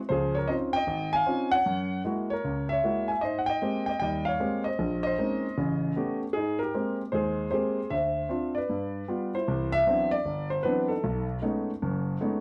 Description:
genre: solo jazz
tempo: 154 BPM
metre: 4/4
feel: swing 66% on 8ths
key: unclear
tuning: A4 = 445 Hz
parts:
  - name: warm concert grand piano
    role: solo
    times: 0.1-12.4 s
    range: F#1 to Ab5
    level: -28 LUFS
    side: equal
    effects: none
room: moderate small room reverb, RT60 0.6 s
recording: dark, warm production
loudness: -28 LUFS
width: mono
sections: 0.0-9.5 A section; 9.5-12.4 B section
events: none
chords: 0.1 Dbmaj9; 1.7 Gb9; 3.2 Abmaj9; 4.8 Bbm11; 5.6 A9; 6.3 Abmaj9; 7.9 Dm7; 8.7 G7; 9.5 Cmaj9#11; 11.0 B13

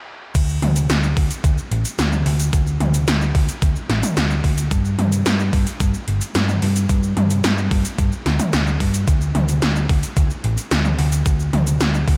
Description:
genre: synthwave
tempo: 110 BPM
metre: 4/4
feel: straight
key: unclear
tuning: A4 = 440 Hz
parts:
  - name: hollow-body short-scale picked electric bass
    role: bass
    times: 0.3-12.2 s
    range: G1 to G2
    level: -21 LUFS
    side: equal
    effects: none
  - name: electronic kick drum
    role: drums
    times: 0.3-12.2 s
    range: none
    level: -22 LUFS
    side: equal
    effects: overdrive
  - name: 80s electronic pad drums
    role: drums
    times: 0.4-12.2 s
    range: cabasa, crash cymbal, hi-hat, snare drum, toms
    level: -24 LUFS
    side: equal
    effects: gated reverb on snare and toms, overdrive, high-pass filter on hats, high-pass filter on toms, high-pass filter on snare, high-pass filter on cymbals, high-pass filter on perc, high-pass filter on room
room: light reverb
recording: none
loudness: -19 LUFS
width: mono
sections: 0.3-12.2 A section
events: stop 0.0-0.3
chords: none

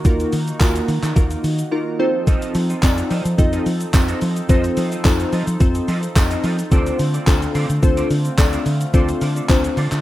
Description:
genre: dance-pop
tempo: 108 BPM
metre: 4/4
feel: straight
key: unclear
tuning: A4 = 439 Hz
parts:
  - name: glassy digital keys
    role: accompaniment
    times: 0.0-9.8 s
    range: Bb3 to Eb5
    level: -22 LUFS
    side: left 1 dB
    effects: chorus, sidechain pumping
  - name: chorused pulse-width pad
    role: sustained chords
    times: 0.0-10.0 s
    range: D3 to A4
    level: -30 LUFS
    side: right 1 dB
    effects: sidechain pumping
  - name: gated 80s digital drum machine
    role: drums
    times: 0.0-10.0 s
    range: handclaps, hi-hat, kick drum, shaker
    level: -18 LUFS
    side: equal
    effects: gated reverb, overdrive
  - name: vintage muted fingered electric bass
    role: bass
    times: 0.1-10.0 s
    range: D2 to F3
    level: -22 LUFS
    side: equal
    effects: sidechain pumping
  - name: tambourine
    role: percussion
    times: 0.6-9.6 s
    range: none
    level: -37 LUFS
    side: right 8 dB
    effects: none
  - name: clean electric guitar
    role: riff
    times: 2.3-10.0 s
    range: C4 to Eb5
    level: -31 LUFS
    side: right 4 dB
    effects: ensemble chorus
room: light reverb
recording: rough home demo mix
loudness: -16 LUFS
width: side -15 dB against mid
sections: 0.0-10.0 A section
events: silent gap 1.7-2.3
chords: 0.0 Ebmadd9; 2.0 F7; 6.7 Dm7

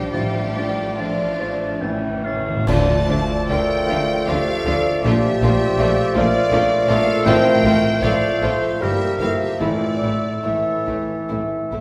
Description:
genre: classical, romantic movement for piano and orchestra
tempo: 68-83 BPM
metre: 3/4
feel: rubato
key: D minor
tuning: A4 = 436 Hz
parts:
  - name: rich studio violin section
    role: melody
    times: 0.0-11.3 s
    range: C#5 to A5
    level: -30 LUFS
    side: equal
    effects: none
  - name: warm concert grand piano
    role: melody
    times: 0.0-11.8 s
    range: D2 to E5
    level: -24 LUFS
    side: equal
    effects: none
  - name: clear studio violin section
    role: second line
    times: 0.0-11.8 s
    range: C4 to G4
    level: -34 LUFS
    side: equal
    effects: none
  - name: rich symphonic viola section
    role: accompaniment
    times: 0.0-11.8 s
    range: E3 to D4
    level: -33 LUFS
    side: equal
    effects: none
  - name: mellow French horn section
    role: sustained chords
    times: 0.0-9.9 s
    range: E3 to E4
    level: -30 LUFS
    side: equal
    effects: none
  - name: rich studio cello section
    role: bass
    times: 0.0-11.8 s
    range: G2 to G3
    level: -32 LUFS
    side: equal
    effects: none
  - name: warm studio double bass section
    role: bass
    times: 0.0-11.8 s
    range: G1 to D2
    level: -29 LUFS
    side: equal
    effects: none
  - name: hollow concert flute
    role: second line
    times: 0.1-11.3 s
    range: E4 to A6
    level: -29 LUFS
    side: equal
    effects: none
  - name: warm oboe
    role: second line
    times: 0.1-11.8 s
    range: A4 to A5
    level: -32 LUFS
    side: equal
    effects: none
  - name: warm bassoon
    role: accompaniment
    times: 0.1-11.8 s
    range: E3 to G3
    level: -31 LUFS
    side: equal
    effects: none
  - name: cymbal swell, clash cymbals and concert bass drum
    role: percussion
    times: 0.1-4.2 s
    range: none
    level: -32 LUFS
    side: equal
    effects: none
  - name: timpani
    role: percussion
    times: 0.1-10.8 s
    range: A2 to D3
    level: -29 LUFS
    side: equal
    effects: none
  - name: mellow clarinet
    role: second line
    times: 0.2-11.7 s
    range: F4 to D5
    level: -31 LUFS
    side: equal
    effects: none
room: wet recital hall reverb, RT60 1.4 s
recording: heard from further back in the room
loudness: -19 LUFS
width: mono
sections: 0.0-2.7 A section; 2.7-11.8 B section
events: timpani fill 1.8-2.7; band accent 2.7-3.5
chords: 0.1 Dm/A; 1.8 A; 2.7 Dm; 5.0 Bbmaj7; 7.3 F/A; 8.8 Edim/G; 9.6 A

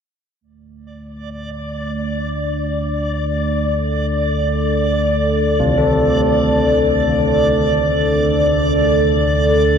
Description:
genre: dark ambient drone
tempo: free time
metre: none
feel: none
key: unclear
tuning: A4 = 440 Hz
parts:
  - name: dark analog pad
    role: sustained chords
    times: 1.2-9.8 s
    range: A3 to D5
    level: -18 LUFS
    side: right 1 dB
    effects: chorus, phaser
  - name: deep rumbling drone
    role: drone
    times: 1.0-9.8 s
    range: D2 to D3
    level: -22 LUFS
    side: left 1 dB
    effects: built-in reverb
  - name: backwards swelling texture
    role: texture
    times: 1.2-9.8 s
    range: D5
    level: -22 LUFS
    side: left 1 dB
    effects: built-in reverb
  - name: old church bells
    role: arpeggios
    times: 5.6-9.8 s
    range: C3 to A4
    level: -20 LUFS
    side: left 1 dB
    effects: diffuse ambient delay
room: wet huge ambient reverb, RT60 7.3 s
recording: none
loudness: -14 LUFS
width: side -7 dB against mid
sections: 0.4-9.8 A section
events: none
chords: 0.4 D5

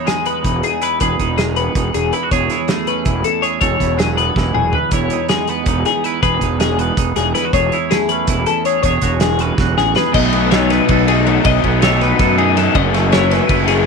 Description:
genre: math rock and midwest emo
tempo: 322 BPM (eighths)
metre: 7/8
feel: straight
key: E major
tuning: A4 = 440 Hz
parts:
  - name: twangy electric guitar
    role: accompaniment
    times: 0.0-13.9 s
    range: E2 to B4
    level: -20 LUFS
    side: right 14 dB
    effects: lush chorus
  - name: twelve-string electric guitar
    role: arpeggios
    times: 0.0-13.9 s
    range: G#4 to D#5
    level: -18 LUFS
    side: left 12 dB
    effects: analog chorus
  - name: loose indie drum kit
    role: drums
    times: 0.1-13.8 s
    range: crash cymbal, hi-hat, kick drum, ride cymbal, snare drum, toms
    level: -20 LUFS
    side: right 1 dB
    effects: none
  - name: fuzz fingered electric bass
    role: bass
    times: 0.4-13.9 s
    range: E1 to F#2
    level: -19 LUFS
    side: right 1 dB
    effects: overdrive
  - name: crunchy overdriven guitar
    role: riff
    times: 10.1-13.9 s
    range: F#2 to D#4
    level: -17 LUFS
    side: left 12 dB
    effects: none
room: light reverb, studio reverb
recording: 1960s-style stereo with parts hard left and right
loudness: -13 LUFS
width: side -5 dB against mid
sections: 0.0-10.1 A section; 10.1-13.9 B section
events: drum fill 4.4-4.9, 9.6-10.1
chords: 0.0 C#m9/E (rootless); 1.0 Emaj7; 2.3 Amaj7/E; 3.6 F#m11/E; 4.9 C#m9/E; 6.2 Emaj7; 7.5 Amaj7/E; 8.8 E69; 10.1 B7; 12.7 F#m7

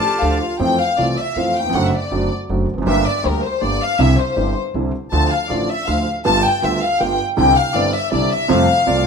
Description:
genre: tango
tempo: 160 BPM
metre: 3/4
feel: rubato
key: F major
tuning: A4 = 442 Hz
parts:
  - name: mellow clarinet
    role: second line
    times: 0.0-0.6, 8.9-9.1 s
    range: F4 to D5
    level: -25 LUFS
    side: right 2 dB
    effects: none
  - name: warm studio violin section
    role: second line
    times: 0.0-9.1 s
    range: Bb4 to A5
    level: -18 LUFS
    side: left 3 dB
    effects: none
  - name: warm grand piano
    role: accompaniment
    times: 0.2-9.0 s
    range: G1 to A4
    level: -19 LUFS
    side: right 2 dB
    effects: none
  - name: upright bass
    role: bass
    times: 0.2-9.0 s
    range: E1 to F2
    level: -22 LUFS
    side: equal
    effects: none
room: moderate large studio reverb, RT60 1.5 s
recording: minimal, uncompressed stereo recording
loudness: -15 LUFS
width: side -6 dB against mid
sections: 0.6-9.1 A section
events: violin section solo 0.6-9.1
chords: 0.0 Dm; 0.6 Fmaj7; 1.7 D7/F#; 2.9 Gm; 4.0 Cadd9; 5.1 Dm; 6.3 G7; 7.4 Cadd9; 8.5 Fadd9

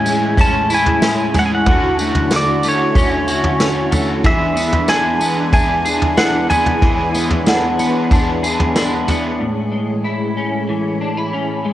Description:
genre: dream pop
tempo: 93 BPM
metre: 4/4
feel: straight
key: A major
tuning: A4 = 439 Hz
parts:
  - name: pedal steel guitar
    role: melody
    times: 0.0-8.7 s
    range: C#5 to A5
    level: -19 LUFS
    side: right 1 dB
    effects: cassette tape, tape echo, shimmer reverb
  - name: overdriven electric guitar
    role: accompaniment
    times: 0.0-9.4 s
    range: E2 to A4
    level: -25 LUFS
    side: right 3 dB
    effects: harmonic tremolo, lush chorus, cassette tape, shimmer reverb
  - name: ensemble organ-string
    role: sustained chords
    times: 0.0-11.7 s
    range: D3 to C#5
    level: -22 LUFS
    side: right 1 dB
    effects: ensemble chorus, cassette tape, shimmer reverb
  - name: electric guitar at the edge of break-up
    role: arpeggios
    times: 0.0-11.7 s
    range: A2 to G#4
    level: -19 LUFS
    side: left 2 dB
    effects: ensemble chorus, cassette tape, tape echo, shimmer reverb
  - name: celesta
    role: texture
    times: 0.0-9.7 s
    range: E5 to G#6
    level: -27 LUFS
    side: right 2 dB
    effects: cassette tape, tape echo, shimmer reverb
  - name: vintage brush drum kit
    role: drums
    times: 0.1-9.2 s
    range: kick drum, snare drum, tambourine, toms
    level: -18 LUFS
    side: equal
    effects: cassette tape
room: moderate spring reverb, RT60 1.7 s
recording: home recording on cassette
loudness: -14 LUFS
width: side -13 dB against mid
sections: 0.0-9.4 A section; 9.4-11.7 B section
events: none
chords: 0.0 Amaj7; 1.7 Dmaj7; 4.2 E7; 9.4 Amaj7

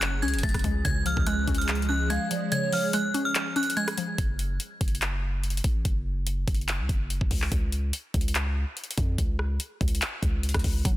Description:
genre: hip hop, trap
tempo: 144 BPM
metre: 4/4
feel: half-time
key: unclear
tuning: A4 = 440 Hz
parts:
  - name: metallic FM bell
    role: melody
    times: 0.0-4.2 s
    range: E#6 to A6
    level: -30 LUFS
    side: equal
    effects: chorus, tape echo
  - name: mallet-like synth pluck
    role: accompaniment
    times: 0.0-4.2, 10.9-11.0 s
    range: C#3 to C#4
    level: -31 LUFS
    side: left 2 dB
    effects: chorus, low-pass filter
  - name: hollow soft pad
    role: sustained chords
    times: 0.0-4.2 s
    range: E#3 to G#4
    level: -34 LUFS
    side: right 1 dB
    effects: ensemble chorus
  - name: warm 808-style bass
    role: bass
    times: 0.0-11.0 s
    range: F#1 to E#2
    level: -28 LUFS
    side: equal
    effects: none
  - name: trap drum kit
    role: drums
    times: 0.0-11.0 s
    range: handclaps, hi-hat, kick drum, rim click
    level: -28 LUFS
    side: equal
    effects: none
  - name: mellow hollow polished pan flute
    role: second line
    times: 2.1-2.9 s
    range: C#5 to E#5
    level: -33 LUFS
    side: right 3 dB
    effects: tape echo
room: little or no reverb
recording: dense, heavily limited modern master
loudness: -24 LUFS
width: side -15 dB against mid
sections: 0.0-4.2 A section; 4.2-11.0 B section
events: kick muted 2.5-4.2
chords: 0.0 F#madd9; 0.9 C#; 4.2 N.C.

